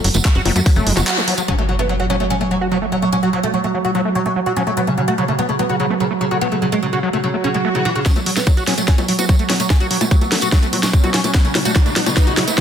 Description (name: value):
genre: psychedelic trance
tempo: 146 BPM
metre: 4/4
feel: straight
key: F# minor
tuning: A4 = 440 Hz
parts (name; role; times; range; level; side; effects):
- vowel-sweep wobble bass; second line; 0.0-1.3, 5.9-12.6 s; E3 to C#4; -33 LUFS; left 4 dB; none
- evolving wavetable pad; sustained chords; 0.0-12.6 s; F#3; -23 LUFS; right 3 dB; chorus, built-in reverb, sidechain pumping
- screaming distorted acid line; riff; 0.0-12.6 s; F#3 to F#4; -22 LUFS; equal; distortion, chorus, auto-pan, cassette tape, sidechain pumping, tape echo
- tight sequencer bass; bass; 0.0-1.0 s; F#1 to F#2; -17 LUFS; equal; none
- garage drum kit; drums; 0.0-1.5, 8.1-12.6 s; bongos, handclaps, hi-hat, snare drum; -20 LUFS; left 1 dB; overdrive, low-pass filter on hats, low-pass filter on perc, low-pass filter on snare
- tambourine; percussion; 0.1-1.5, 8.1-12.6 s; none; -27 LUFS; right 4 dB; none
- electronic kick drum; drums; 0.2-0.7, 8.1-12.6 s; none; -14 LUFS; equal; overdrive
- oud; melody; 1.5-12.6 s; C#3 to C#4; -21 LUFS; equal; phaser, sidechain pumping, dub echo
- impact, swell and riser; sound effects; 1.5-3.1, 7.4-12.6 s; none; -25 LUFS; equal; none
room: moderate digital room reverb, RT60 1.4 s, digital ambience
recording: dense, heavily limited modern master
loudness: -14 LUFS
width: side -8 dB against mid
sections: 0.0-1.5 A section; 1.5-8.1 B section; 8.1-12.6 C section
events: break 1.1-1.5; band accent 1.1; impact 1.5-3.1; swell 7.4-8.1; build-up 8.1-12.6; drum fill 8.1-12.6; riser 8.1-12.6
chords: 0.0 F#5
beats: 0.25 0.66 1.07 | 1.48 1.89 2.30 2.71 | 3.13 3.54 3.95 4.36 | 4.77 5.18 5.59 6.00 | 6.41 6.83 7.24 7.65 | 8.06 8.47 8.88 9.29 | 9.70 10.11 10.52 10.93 | 11.35 11.76 12.17 12.58